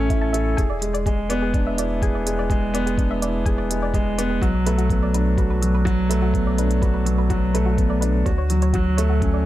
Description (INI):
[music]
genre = piano and strings electronica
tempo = 125 BPM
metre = 4/4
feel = straight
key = unclear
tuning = A4 = 439 Hz
[part]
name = soft round pluck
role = arpeggios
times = 0.0-9.4 s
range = F#4 to A5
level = -32 LUFS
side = equal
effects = chorus, sidechain pumping, tape echo
[part]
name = dark baby grand piano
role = riff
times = 0.0-9.5 s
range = F#3 to C#5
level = -22 LUFS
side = right 1 dB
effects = tape echo
[part]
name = warm sub bass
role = bass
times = 0.0-9.5 s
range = E1 to D2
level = -23 LUFS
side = equal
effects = sidechain pumping
[part]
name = electronic hi-hat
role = drums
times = 0.1-9.3 s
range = none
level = -32 LUFS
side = right 1 dB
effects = none
[part]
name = electronic kick drum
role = drums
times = 0.1-9.3 s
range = none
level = -22 LUFS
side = equal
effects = overdrive
[sound]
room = digital ambience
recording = none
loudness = -18 LUFS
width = side -14 dB against mid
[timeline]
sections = 0.0-9.5 A section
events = none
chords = 0.0 A; 0.6 E7; 4.4 Bm7; 8.3 Dmaj7